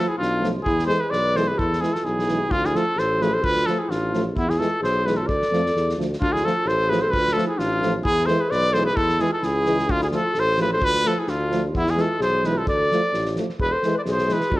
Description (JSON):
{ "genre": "balkan folk, Balkan brass band", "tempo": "130 BPM", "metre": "2/4", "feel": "swing 54% on 16ths", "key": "D dorian sharp4", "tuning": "A4 = 440 Hz", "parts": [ { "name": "clear trumpet", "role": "melody", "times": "0.0-14.6 s", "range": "E4 to D5", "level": "-22 LUFS", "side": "equal", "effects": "none" }, { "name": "dark clarinet", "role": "second line", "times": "0.0-14.6 s", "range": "B3 to B4", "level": "-27 LUFS", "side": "equal", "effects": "none" }, { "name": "mellow euphonium", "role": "accompaniment", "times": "0.0-14.4 s", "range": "E3 to F3", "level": "-30 LUFS", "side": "right 3 dB", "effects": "none" }, { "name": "warm French horn", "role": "accompaniment", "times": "0.0-14.4 s", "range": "G#3 to A3", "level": "-31 LUFS", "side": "left 4 dB", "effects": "none" }, { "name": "warm tuba", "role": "bass", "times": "0.2-14.6 s", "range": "E1 to F2", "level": "-26 LUFS", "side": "equal", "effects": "none" }, { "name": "loose indie drum kit", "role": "percussion", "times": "0.2-14.6 s", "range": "kick drum, snare drum", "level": "-31 LUFS", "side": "equal", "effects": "none" } ], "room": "moderate recital hall reverb, RT60 1.5 s", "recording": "worn, warbling old tape, cassette tape, warbly pitch drift", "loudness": "-19 LUFS", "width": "side -18 dB against mid", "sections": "0.0-6.2 A section; 6.2-13.6 A section; 13.6-14.6 B section", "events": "none", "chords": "0.0 Dm; 0.7 E; 2.5 Dm; 4.4 E; 5.3 Dm; 8.1 E; 9.9 Dm; 11.7 E; 12.7 Dm; 13.6 E" }